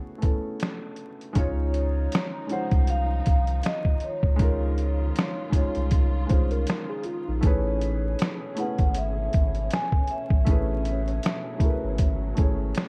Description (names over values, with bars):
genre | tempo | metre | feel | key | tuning
lo-fi hip hop | 79 BPM | 4/4 | swing 60% on 16ths | Db major | A4 = 440 Hz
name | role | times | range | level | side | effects
felt-muted upright piano | accompaniment | 0.0-12.9 s | E3 to Db5 | -34 LUFS | equal | cassette tape, low-pass filter
trip hop sampler-style drum kit | drums | 0.2-12.9 s | finger snaps, hi-hat, kick drum, snare drum | -26 LUFS | equal | none
vibraphone with soft mallets | melody | 1.4-12.3 s | Db5 to G#5 | -35 LUFS | equal | low-pass filter
warm studio string section | sustained chords | 1.4-12.9 s | B2 to G#4 | -42 LUFS | equal | low-pass filter
warm sub bass | bass | 1.4-12.7 s | G#1 to D2 | -29 LUFS | equal | none
mellow tine electric piano | second line | 6.3-8.4 s | Eb4 to C5 | -37 LUFS | equal | low-pass filter, analog delay
room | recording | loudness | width
small room reverb | dark, warm production, vinyl crackle | -25 LUFS | mono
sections
0.0-1.4 A section; 1.4-12.9 B section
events
filter sweep 0.0-1.4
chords
0.0 Amaj9; 1.4 Dbmaj9; 7.4 Amaj9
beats
0.60 | 1.36 2.12 2.88 3.64 | 4.40 5.16 5.92 6.67 | 7.43 8.19 8.95 9.71 | 10.47 11.23 11.99 12.75